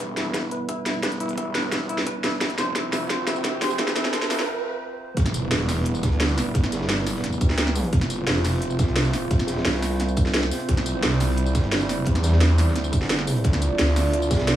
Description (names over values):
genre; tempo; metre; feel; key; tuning
dark technical drum and bass; 174 BPM; 4/4; straight; E phrygian; A4 = 435 Hz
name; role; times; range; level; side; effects
dark analog pad; sustained chords; 0.0-14.6 s; F3 to D5; -28 LUFS; right 2 dB; chorus, sidechain pumping
clean electric guitar; arpeggios; 0.0-4.4 s; E4 to C5; -30 LUFS; left 2 dB; sidechain pumping, low-pass filter, tape echo
snarling distorted saw bass; bass; 0.0-14.6 s; E1 to E2; -24 LUFS; equal; distortion, overdrive, high-pass filter
drum and bass drum kit; drums; 0.0-14.5 s; hi-hat, snare drum, tambourine; -26 LUFS; equal; none
electronic kick drum; drums; 0.0-14.4 s; none; -23 LUFS; equal; high-pass filter on kick
riser and impact; sound effects; 1.4-6.5 s; none; -32 LUFS; right 2 dB; none
crunchy breakbeat drum kit; drums; 5.2-14.6 s; hi-hat, snare drum; -34 LUFS; right 1 dB; none
growling FM bass; bass; 7.4-10.5, 12.9-13.4 s; G1 to D2; -25 LUFS; equal; none
room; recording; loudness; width
light reverb; high-pass filter, small room ambience; -20 LUFS; side -12 dB against mid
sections
0.0-5.2 A section; 5.2-14.6 B section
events
build-up 0.0-5.2; drum fill 0.0-4.5; filter sweep on clean electric guitar 0.0-5.2; riser 1.4-4.5; break 4.5-5.2; drop 5.2-14.6; impact 5.2-6.5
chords
0.0 Em; 2.4 F; 5.2 Em; 7.9 F; 10.7 C; 13.4 Dm